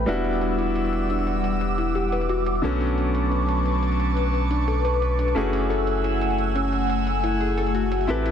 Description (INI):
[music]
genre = liquid drum and bass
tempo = 176 BPM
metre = 4/4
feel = straight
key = unclear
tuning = A4 = 440 Hz
[part]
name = clear concert grand piano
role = accompaniment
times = 0.0-8.3 s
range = D3 to B4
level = -27 LUFS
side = left 1 dB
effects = digital delay
[part]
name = airy breathy pad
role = sustained chords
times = 0.0-8.3 s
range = G3 to E6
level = -27 LUFS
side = left 1 dB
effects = chorus, phaser
[part]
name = warm sub bass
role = bass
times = 0.0-8.3 s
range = E1 to B1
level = -25 LUFS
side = right 1 dB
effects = none
[part]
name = harp-like synth pluck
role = arpeggios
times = 0.1-8.3 s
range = C#4 to B4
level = -28 LUFS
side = left 4 dB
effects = chorus, dub echo
[part]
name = electronic hi-hat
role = drums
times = 0.1-8.3 s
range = none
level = -46 LUFS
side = equal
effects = none
[sound]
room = light reverb, digital ambience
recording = dense, heavily limited modern master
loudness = -21 LUFS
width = side -8 dB against mid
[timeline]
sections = 0.0-8.3 A section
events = filter sweep on synth pluck 0.0-8.3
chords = 0.1 Em9; 2.6 Bm9; 5.4 F#m9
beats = | 0.08 0.42 0.76 1.10 | 1.44 1.78 2.12 2.46 | 2.80 3.15 3.49 3.83 | 4.17 4.51 4.85 5.19 | 5.53 5.87 6.21 6.55 | 6.89 7.24 7.58 7.92 | 8.26